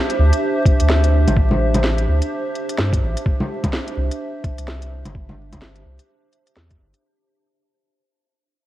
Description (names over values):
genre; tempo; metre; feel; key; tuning
future garage; 127 BPM; 4/4; swing 60% on 16ths; unclear; A4 = 442 Hz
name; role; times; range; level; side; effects
warbly tape-like pad; sustained chords; 0.0-7.0 s; D4 to E5; -23 LUFS; right 1 dB; chorus, built-in reverb, sidechain pumping
organic electronic drum kit; drums; 0.1-7.0 s; bongos, hi-hat, snare drum; -24 LUFS; equal; none
warm sub bass; bass; 0.2-6.9 s; G1 to G2; -17 LUFS; equal; sidechain pumping
electronic kick drum; drums; 0.7-6.8 s; none; -18 LUFS; equal; overdrive
room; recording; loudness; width
little or no reverb; vinyl crackle; -16 LUFS; side -14 dB against mid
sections
0.0-7.0 A section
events
fade-out 0.0-7.0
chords
0.0 D5; 3.3 C